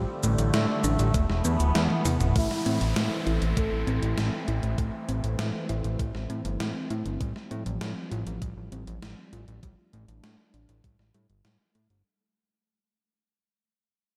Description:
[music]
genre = synthwave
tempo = 99 BPM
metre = 4/4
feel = straight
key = A minor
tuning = A4 = 439 Hz
[part]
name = phased analog pad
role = sustained chords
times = 0.0-12.0 s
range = D3 to D4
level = -35 LUFS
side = equal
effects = phaser, chorus, sidechain pumping
[part]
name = thumb-piano-like synth pluck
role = arpeggios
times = 0.0-12.0 s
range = G3 to F4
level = -38 LUFS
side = equal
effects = chorus, analog delay
[part]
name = fat analog bass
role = bass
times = 0.0-12.0 s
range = D1 to A2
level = -30 LUFS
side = equal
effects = tube saturation, sidechain pumping
[part]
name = gated 80s digital drum machine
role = drums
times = 0.2-12.0 s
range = cabasa, hi-hat, snare drum, toms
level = -35 LUFS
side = equal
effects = gated reverb, gated reverb snare
[part]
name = electronic kick drum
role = drums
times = 1.1-11.0 s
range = none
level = -32 LUFS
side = equal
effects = none
[part]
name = expressive synth lead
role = melody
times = 2.4-3.9 s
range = E4 to A4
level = -40 LUFS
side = equal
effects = chorus, diffuse ambient delay
[part]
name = downlifter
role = sound effects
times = 2.4-7.2 s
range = none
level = -42 LUFS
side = equal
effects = none
[sound]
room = moderate cathedral reverb, RT60 4.8 s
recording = dreamy mix soaked in reverb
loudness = -27 LUFS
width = mono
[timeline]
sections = 0.0-2.4 A section; 2.4-12.1 B section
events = drum fill 1.8-2.4; fade-out 2.4-12.1; filter sweep on analog synth pad 2.4-12.1; filter sweep on synth arpeggio sound 2.4-12.1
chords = 0.0 Gsus2/A; 1.1 Esus4; 2.4 Am; 7.2 Fsus2/A; 9.6 Gsus2/A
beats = 0.54 1.14 1.75 | 2.36 2.96 3.57 4.17 | 4.78 5.39 5.99 6.60 | 7.21 7.81 8.42 9.02 | 9.63 10.23 10.84 11.45

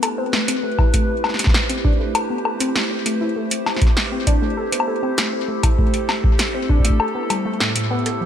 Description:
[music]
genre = IDM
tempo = 99 BPM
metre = 4/4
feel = straight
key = A minor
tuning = A4 = 440 Hz
[part]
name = warbly tape-like pad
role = sustained chords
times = 0.0-8.3 s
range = F3 to C5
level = -25 LUFS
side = right 2 dB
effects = chorus, built-in reverb, phaser
[part]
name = warbly dusty pluck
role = arpeggios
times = 0.0-8.3 s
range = A2 to A4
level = -24 LUFS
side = left 1 dB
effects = chorus, ping-pong delay
[part]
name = electro analog drum machine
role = drums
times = 0.0-8.2 s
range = hi-hat, snare drum, woodblock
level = -22 LUFS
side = left 2 dB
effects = ping-pong delay
[part]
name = electronic kick drum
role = drums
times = 0.8-7.0 s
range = none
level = -17 LUFS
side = equal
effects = none
[sound]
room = moderate plate reverb, RT60 2.0 s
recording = bright 1980s-style digital production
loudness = -17 LUFS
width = side -9 dB against mid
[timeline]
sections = 0.0-8.3 A section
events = none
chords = 0.0 Am7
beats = 0.33 | 0.94 1.54 2.15 2.76 | 3.36 3.97 4.57 5.18 | 5.79 6.39 7.00 7.60 | 8.21

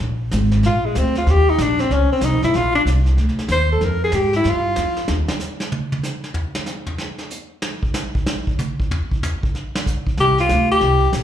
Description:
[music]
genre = jazz, small-group swing and bop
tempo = 188 BPM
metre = 4/4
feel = swing 64% on 8ths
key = Bb mixolydian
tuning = A4 = 439 Hz
[part]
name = upright bass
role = bass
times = 0.0-5.3, 10.2-11.2 s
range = G1 to Ab2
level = -18 LUFS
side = equal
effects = none
[part]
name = vintage brush drum kit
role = drums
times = 0.3-11.2 s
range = brushed snare drum, hi-hat, kick drum, snare drum, toms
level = -24 LUFS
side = right 1 dB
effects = slapback echo
[part]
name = breathy alto saxophone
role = melody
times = 0.7-5.1, 10.2-11.1 s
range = Ab3 to C5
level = -18 LUFS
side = left 1 dB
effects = slapback echo
[sound]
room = light reverb, small room ambience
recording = live gig heard through the venue's PA, club reverb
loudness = -17 LUFS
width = side -10 dB against mid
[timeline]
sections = 0.0-11.2 A section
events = alto saxophone solo 0.0-11.2; drum solo 5.1-10.2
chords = 0.0 Bb7; 1.3 Eb7(no3); 2.5 Bb7; 5.1 N.C.; 10.2 C5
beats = | 0.00 0.32 0.64 0.95 | 1.27 1.59 1.91 2.23 | 2.55 2.86 3.18 3.50 | 3.82 4.14 4.46 4.77 | 5.09 5.41 5.73 6.05 | 6.37 6.68 7.00 7.32 | 7.64 7.96 8.28 8.60 | 8.91 9.23 9.55 9.87 | 10.19 10.51 10.82 11.14

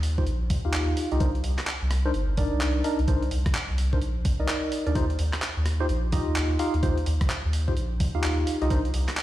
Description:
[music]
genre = UK garage, two-step garage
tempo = 128 BPM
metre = 4/4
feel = swing 63% on 16ths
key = Eb major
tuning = A4 = 440 Hz
[part]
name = soft dub sub bass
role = bass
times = 0.0-9.1 s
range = G1 to Eb2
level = -26 LUFS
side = equal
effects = sidechain pumping
[part]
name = breakbeat sampler-style drum kit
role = drums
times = 0.0-9.2 s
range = handclaps, hi-hat, rim click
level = -32 LUFS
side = equal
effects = none
[part]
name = barky tine electric piano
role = stabs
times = 0.2-8.8 s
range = D4 to F5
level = -29 LUFS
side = equal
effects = fast stereo tremolo, low-pass filter, dub echo
[part]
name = electronic kick drum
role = drums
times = 0.2-8.8 s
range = none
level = -25 LUFS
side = equal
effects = none
[sound]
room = light reverb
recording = played on a big sound system in a bare room, stone room reverb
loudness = -23 LUFS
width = side -14 dB against mid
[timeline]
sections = 0.0-9.2 A section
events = filter sweep on tine electric piano 0.0-9.2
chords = 0.0 Ebadd9; 1.2 Cm9; 5.0 Ebadd9; 8.7 Cm9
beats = 0.27 0.74 | 1.21 1.67 2.14 2.61 | 3.08 3.55 4.02 4.49 | 4.96 5.42 5.89 6.36 | 6.83 7.30 7.77 8.24 | 8.71 9.17

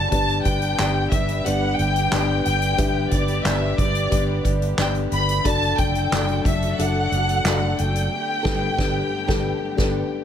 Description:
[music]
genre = piano-driven pop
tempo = 90 BPM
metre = 4/4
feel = straight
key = G major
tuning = A4 = 441 Hz
[part]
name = warm studio violin section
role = melody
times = 0.0-10.1 s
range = D5 to B5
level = -24 LUFS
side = left 1 dB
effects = none
[part]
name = dark upright piano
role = accompaniment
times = 0.0-10.2 s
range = G2 to E5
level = -26 LUFS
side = left 6 dB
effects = none
[part]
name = warm studio string section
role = sustained chords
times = 0.0-10.2 s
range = D3 to A4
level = -34 LUFS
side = equal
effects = none
[part]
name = picked steel-string acoustic guitar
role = riff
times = 0.0-10.0 s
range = G2 to B4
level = -30 LUFS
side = right 7 dB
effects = none
[part]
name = vintage muted fingered electric bass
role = bass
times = 0.0-10.0 s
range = F#1 to G1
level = -24 LUFS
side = equal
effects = none
[part]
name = soft-mallet drum kit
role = drums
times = 0.1-10.0 s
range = crash cymbal, handclaps, hi-hat, kick drum, snare drum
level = -25 LUFS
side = equal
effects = none
[sound]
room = light reverb, studio reverb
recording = none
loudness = -19 LUFS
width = side -9 dB against mid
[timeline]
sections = 0.0-10.2 A section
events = band accent 8.1-10.2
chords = 0.1 G; 5.5 D/F#; 8.1 Gadd9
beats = | 0.12 0.79 1.45 2.12 | 2.79 3.45 4.12 4.79 | 5.45 6.12 6.78 7.45 | 8.12 8.79 9.45 10.12

